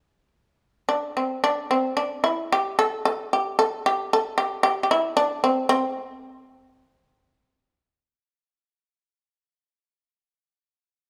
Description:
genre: japanese traditional, Japanese chamber music.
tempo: 53-60 BPM.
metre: 4/4.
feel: rubato.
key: D suspended pentatonic.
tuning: A4 = 440 Hz.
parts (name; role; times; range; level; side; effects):
shamisen; solo; 0.0-11.1 s; C4 to A4; -24 LUFS; equal; none.
room: moderate recital hall reverb, RT60 1.6 s.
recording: none.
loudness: -24 LUFS.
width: mono.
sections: 0.0-1.4 A section; 1.4-11.1 B section.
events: none.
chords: none.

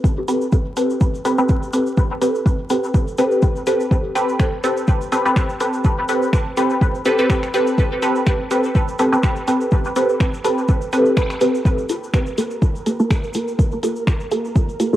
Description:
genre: dub techno.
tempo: 124 BPM.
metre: 4/4.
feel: swing 55% on 16ths.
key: unclear.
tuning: A4 = 440 Hz.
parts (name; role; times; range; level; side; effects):
filtered dub chord stab; stabs; 0.0-15.0 s; Bb3 to B4; -18 LUFS; equal; chorus, phaser, sidechain pumping, cassette tape, dub echo.
electronic kick drum; drums; 0.0-14.7 s; none; -17 LUFS; equal; overdrive.
tube shaker; percussion; 0.0-15.0 s; none; -40 LUFS; left 1 dB; none.
punchy analog drum machine; drums; 0.3-14.9 s; finger snaps, hi-hat; -31 LUFS; equal; none.
flickering grainy texture; texture; 12.0-15.0 s; Bb4; -30 LUFS; right 2 dB; built-in reverb, sidechain pumping, cassette tape.
room: moderate spring reverb, RT60 1.9 s, digital ambience.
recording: home recording on cassette, vinyl crackle.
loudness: -16 LUFS.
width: side -13 dB against mid.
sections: 0.0-11.7 A section; 11.7-15.0 A section.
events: band accent 11.2; filter sweep on synth stab 11.7-15.0.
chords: 0.0 Am9; 11.7 Gm9.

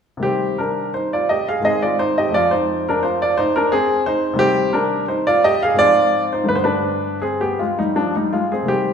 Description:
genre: classical, baroque-style suite movement for grand piano.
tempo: 81-89 BPM.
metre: 3/4.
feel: rubato.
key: C minor.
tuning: A4 = 440 Hz.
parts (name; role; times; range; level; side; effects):
warm grand piano; solo; 0.2-8.9 s; F2 to F5; -16 LUFS; equal; none.
room: wet scoring stage reverb, RT60 1.4 s.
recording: recorded in a church or concert hall.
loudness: -16 LUFS.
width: side -7 dB against mid.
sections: 0.2-8.9 A section.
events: none.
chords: 0.2 Cm; 1.6 Ab; 2.3 Fm; 4.4 Cm; 5.8 Fm/Ab; 6.5 G.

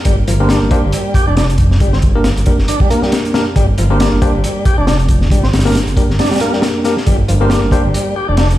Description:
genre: breakbeat, breaks.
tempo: 137 BPM.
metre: 4/4.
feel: swing 57% on 16ths.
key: G minor.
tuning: A4 = 440 Hz.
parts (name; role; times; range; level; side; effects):
crunchy breakbeat drum kit; drums; 0.0-8.6 s; hi-hat, kick drum, snare drum; -14 LUFS; equal; none.
tonewheel organ; riff; 0.1-8.5 s; F3 to G4; -19 LUFS; equal; overdrive, slow rotary speaker, vintage 12-bit sampler grit, ping-pong delay.
dark detuned saw bass; bass; 0.1-8.6 s; F1 to G1; -14 LUFS; equal; none.
tine electric piano; stabs; 0.4-7.8 s; Bb3 to C5; -18 LUFS; left 2 dB; fast stereo tremolo, ping-pong delay.
room: light reverb.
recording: played on a big sound system in a bare room, stone room reverb.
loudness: -11 LUFS.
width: side -14 dB against mid.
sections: 0.0-8.6 A section.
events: none.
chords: 0.0 Gm.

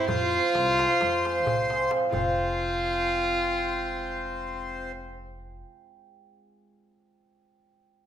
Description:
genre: balkan folk, Balkan wedding band.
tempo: 265 BPM (eighths).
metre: 9/8.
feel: straight.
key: F minor.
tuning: A4 = 438 Hz.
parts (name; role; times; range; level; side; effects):
warm fiddle; melody; 0.0-4.9 s; F4; -27 LUFS; equal; none.
accordion; second line; 0.0-4.9 s; C4 to C5; -30 LUFS; left 1 dB; none.
cimbalom; accompaniment; 0.0-6.7 s; G3 to Ab4; -30 LUFS; right 2 dB; none.
upright bass; bass; 0.1-5.6 s; F1 to F2; -37 LUFS; equal; none.
darbuka; percussion; 0.1-2.4 s; none; -35 LUFS; left 3 dB; none.
room: wet recital hall reverb, RT60 1.6 s.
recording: none.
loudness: -24 LUFS.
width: side -10 dB against mid.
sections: 0.0-2.1 A section; 2.1-4.2 B section.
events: none.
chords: 0.1 Fm.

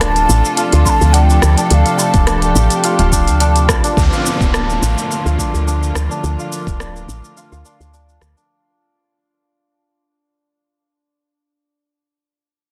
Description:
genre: organic downtempo.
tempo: 106 BPM.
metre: 4/4.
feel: swing 54% on 16ths.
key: unclear.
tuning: A4 = 439 Hz.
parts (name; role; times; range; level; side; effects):
breathy mellow ney; melody; 0.0-2.6 s; F5 to C6; -22 LUFS; equal; tape echo.
dark studio string section; sustained chords; 0.0-8.5 s; C3 to A4; -24 LUFS; equal; sidechain pumping.
santur; arpeggios; 0.0-12.1 s; D4 to F4; -22 LUFS; equal; tape echo.
woody FM bass; bass; 0.0-8.3 s; D1 to D2; -16 LUFS; equal; tube saturation, sidechain pumping.
organic electronic drum kit; drums; 0.0-8.5 s; hi-hat, rim click, shaker; -23 LUFS; equal; soft clipping on snare.
electronic kick drum; drums; 0.9-6.8 s; none; -19 LUFS; equal; none.
downlifter; sound effects; 4.0-8.5 s; none; -27 LUFS; equal; none.
room: light reverb, digital ambience.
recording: dense, heavily limited modern master.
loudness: -14 LUFS.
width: mono.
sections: 0.0-4.0 A section; 4.0-8.5 B section.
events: fade-out 4.0-8.5.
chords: 0.0 F/D; 4.0 Bbmaj7/D.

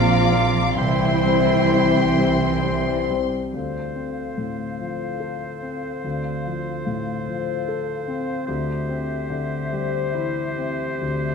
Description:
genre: cinematic, emotional film score for orchestra.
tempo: 42-50 BPM (dotted quarters).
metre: 6/8.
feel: rubato.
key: D minor.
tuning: A4 = 438 Hz.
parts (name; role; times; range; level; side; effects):
warm studio violin section; melody; 0.0-3.3 s; C6 to D6; -29 LUFS; left 4 dB; none.
dark studio violin section; second line; 0.0-3.3 s; C5 to Bb5; -30 LUFS; left 3 dB; none.
mellow clarinet; second line; 0.0-11.3 s; G4 to G5; -33 LUFS; left 2 dB; none.
mellow flute section; second line; 0.0-11.3 s; E5 to F5; -33 LUFS; left 4 dB; none.
warm oboe; second line; 0.0-11.3 s; C5 to C6; -31 LUFS; right 3 dB; none.
warm concert grand piano; accompaniment; 0.0-11.3 s; Bb1 to C5; -26 LUFS; left 1 dB; none.
warm studio viola section; accompaniment; 0.0-3.0 s; E4 to F4; -27 LUFS; right 2 dB; none.
mellow French horn section; sustained chords; 0.0-3.0 s; E3 to F3; -32 LUFS; left 3 dB; none.
concert harp; arpeggios; 0.0-11.3 s; Bb2 to C6; -28 LUFS; left 9 dB; none.
dark studio cello section; bass; 0.0-3.0 s; E3 to F3; -26 LUFS; right 5 dB; none.
warm studio double bass section; bass; 0.0-3.3 s; Bb1 to C2; -23 LUFS; right 5 dB; none.
room: wet concert hall reverb, RT60 2.4 s.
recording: dark, warm production.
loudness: -20 LUFS.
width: side -5 dB against mid.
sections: 0.0-3.5 A section; 3.5-11.3 B section.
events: none.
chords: 0.0 Bbsus2; 0.8 C; 3.5 Dm7; 8.5 Cadd9/D.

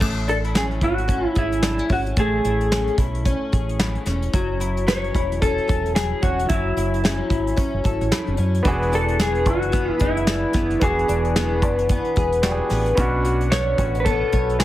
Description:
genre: indie pop, bedroom pop.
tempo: 111 BPM.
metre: 4/4.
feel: swing 60% on 16ths.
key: A major.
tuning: A4 = 438 Hz.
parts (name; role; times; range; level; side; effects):
clear upright piano; accompaniment; 0.0, 8.6-14.6 s; B3 to G#4; -27 LUFS; right 1 dB; cassette tape.
flamenco guitar; accompaniment; 0.0-14.6 s; B2 to C#5; -25 LUFS; left 3 dB; analog chorus, warbly pitch drift.
deep dub fingered electric bass; bass; 0.0-14.6 s; E1 to F#2; -24 LUFS; equal; none.
soft brush drum kit; drums; 0.0-14.6 s; crash cymbal, hi-hat, kick drum, snare drum; -23 LUFS; equal; none.
electric guitar through a small old amp; melody; 0.3-14.6 s; E4 to C#5; -23 LUFS; equal; lush chorus, slapback echo.
room: light reverb, small room reverb.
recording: heavily compressed radio sound.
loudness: -18 LUFS.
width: side -14 dB against mid.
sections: 0.0-14.6 A section.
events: none.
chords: 0.0 Amaj7; 4.3 F#m7; 8.7 E7; 13.0 Bmadd9.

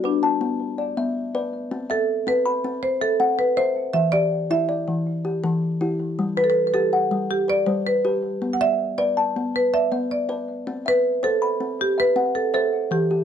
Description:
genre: southern african traditional.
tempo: 107 BPM (dotted quarters).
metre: 12/8.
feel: straight.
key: unclear.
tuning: A4 = 441 Hz.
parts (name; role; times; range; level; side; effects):
marimba with medium mallets; melody; 0.0-13.2 s; D4 to F#5; -21 LUFS; right 1 dB; none.
kalimba; arpeggios; 0.0-13.2 s; E3 to B5; -24 LUFS; left 2 dB; tape echo.
room: moderate studio reverb, RT60 0.6 s.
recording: close, detailed microphones.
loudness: -20 LUFS.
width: side -8 dB against mid.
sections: 0.0-13.2 A section.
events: none.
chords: 0.0 Bm; 1.7 C; 3.9 Em; 6.2 G; 8.4 Bm; 10.7 C.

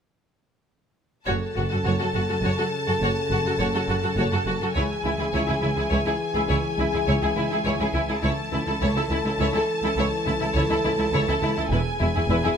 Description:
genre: cinematic.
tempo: 69 BPM (dotted quarters).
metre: 12/8.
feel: straight.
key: F# minor.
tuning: A4 = 440 Hz.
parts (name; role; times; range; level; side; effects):
rich studio violin section; melody; 1.3-12.6 s; G#5 to A5; -30 LUFS; left 3 dB; none.
clear symphonic violin section; second line; 1.3-12.5 s; E4 to C#5; -30 LUFS; left 1 dB; none.
rich symphonic viola section; accompaniment; 1.3-12.5 s; E4 to F#4; -30 LUFS; equal; none.
mellow French horn section; sustained chords; 1.3-12.6 s; C#3 to A4; -28 LUFS; left 2 dB; none.
clear symphonic cello section; bass; 1.3-12.5 s; C#2 to F#2; -28 LUFS; right 1 dB; none.
rich symphonic double bass section; bass; 1.3-12.3 s; E1 to C#2; -28 LUFS; right 2 dB; none.
room: light reverb.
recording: none.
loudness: -21 LUFS.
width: side -7 dB against mid.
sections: 1.3-12.6 A section.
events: build-up 1.3-12.6.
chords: 1.3 F#m; 4.8 C#m; 8.2 A/C#; 11.7 E.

